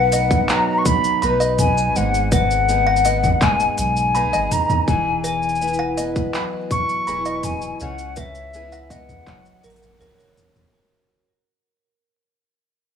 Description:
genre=folktronica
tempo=82 BPM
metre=4/4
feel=straight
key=B major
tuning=A4 = 439 Hz
part: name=mellow hollow silver concert flute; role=melody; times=0.0-10.0 s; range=E5 to C#6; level=-20 LUFS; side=left 3 dB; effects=digital delay
part: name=music box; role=second line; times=0.0-10.4 s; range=A#4 to B5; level=-28 LUFS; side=right 1 dB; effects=digital delay
part: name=picked twelve-string acoustic guitar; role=arpeggios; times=0.0-11.3 s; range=G#2 to B4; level=-24 LUFS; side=equal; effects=digital delay
part: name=warm sub bass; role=bass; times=0.0-10.7 s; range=D#1 to C#2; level=-25 LUFS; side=equal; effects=none
part: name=organic electronic drum kit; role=drums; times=0.1-10.7 s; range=handclaps, hi-hat, shaker, toms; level=-24 LUFS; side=equal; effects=none
part: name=electronic kick drum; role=drums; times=0.3-9.4 s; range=none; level=-21 LUFS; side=equal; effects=none
room=light reverb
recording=vinyl crackle, small room reverb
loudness=-16 LUFS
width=side -7 dB against mid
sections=0.0-10.7 A section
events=fade-out 2.9-10.7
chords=0.0 B; 2.0 G#m; 4.9 Eadd9; 7.8 C#m7; 9.3 F#add9

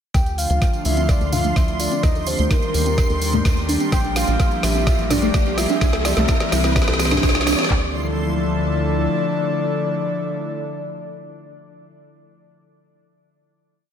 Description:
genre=progressive house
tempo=127 BPM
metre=4/4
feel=straight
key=D minor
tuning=A4 = 440 Hz
part: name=soft octave-layered synth lead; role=melody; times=0.1-11.8 s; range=Bb4 to G5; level=-26 LUFS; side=left 1 dB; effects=chorus, sidechain pumping, ping-pong delay
part: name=airy breathy pad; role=sustained chords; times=0.1-11.8 s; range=D3 to A4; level=-24 LUFS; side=left 1 dB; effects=chorus, sidechain pumping
part: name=soft round pluck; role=arpeggios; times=0.1-7.9 s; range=A3 to D5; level=-25 LUFS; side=right 1 dB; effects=wide subtle chorus, sidechain pumping, diffuse ambient delay
part: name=tight sequencer bass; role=bass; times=0.1-9.1 s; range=Bb1 to Eb2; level=-23 LUFS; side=equal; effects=sidechain pumping
part: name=deep house drum kit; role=drums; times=0.1-7.7 s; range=hi-hat, snare drum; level=-25 LUFS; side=equal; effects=none
part: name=pop drum kit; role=drums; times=0.1-7.8 s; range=handclaps, kick drum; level=-19 LUFS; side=equal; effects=none
part: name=tambourine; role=percussion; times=0.1-7.7 s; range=none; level=-32 LUFS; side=right 6 dB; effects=none
part: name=riser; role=sound effects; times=3.6-7.7 s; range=none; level=-31 LUFS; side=right 2 dB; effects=none
part: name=backwards swelling texture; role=texture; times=0.9-7.7 s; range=C6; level=-33 LUFS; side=right 3 dB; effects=built-in reverb, analog chorus, sidechain pumping
part: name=electronic congas and toms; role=percussion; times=1.0-7.7 s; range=none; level=-30 LUFS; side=left 2 dB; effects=none
room=moderate lush hall reverb, RT60 1.6 s, digital ambience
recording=dreamy mix soaked in reverb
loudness=-17 LUFS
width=side -8 dB against mid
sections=0.1-7.7 build; 7.7-11.5 final chord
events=build-up 0.1-7.7; drum fill 0.1-7.7; filter sweep on synth pluck 0.1-7.7; riser 3.6-7.7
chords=0.1 Dm; 2.0 Ebmaj7; 3.9 Bb6; 5.8 C7; 7.7 Dmadd9

